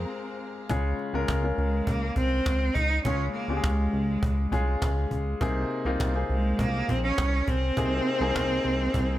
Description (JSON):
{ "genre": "piano-driven pop", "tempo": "102 BPM", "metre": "4/4", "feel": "straight", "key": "Db major", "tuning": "A4 = 441 Hz", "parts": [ { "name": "rich cello", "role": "melody", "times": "0.0-9.2 s", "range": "Ab3 to Eb4", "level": "-28 LUFS", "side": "right 1 dB", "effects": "none" }, { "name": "clear concert grand piano", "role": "accompaniment", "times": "0.0-9.2 s", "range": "C3 to Bb4", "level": "-31 LUFS", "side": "left 2 dB", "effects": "none" }, { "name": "warm studio string section", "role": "sustained chords", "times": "0.0-0.7 s", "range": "Ab4 to Bb5", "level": "-45 LUFS", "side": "left 1 dB", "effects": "none" }, { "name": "chorused synth bass", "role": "bass", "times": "0.0-9.2 s", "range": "Bb1 to Db2", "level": "-27 LUFS", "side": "equal", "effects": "none" }, { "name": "cajon", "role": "drums", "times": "0.7-9.2 s", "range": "none", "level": "-32 LUFS", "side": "equal", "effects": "none" } ], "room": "light reverb, small room ambience", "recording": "none", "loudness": "-24 LUFS", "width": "side -14 dB against mid", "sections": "0.7-9.2 A section", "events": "break 0.1-0.7", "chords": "0.0 Fm; 0.7 Db; 5.4 Abadd9" }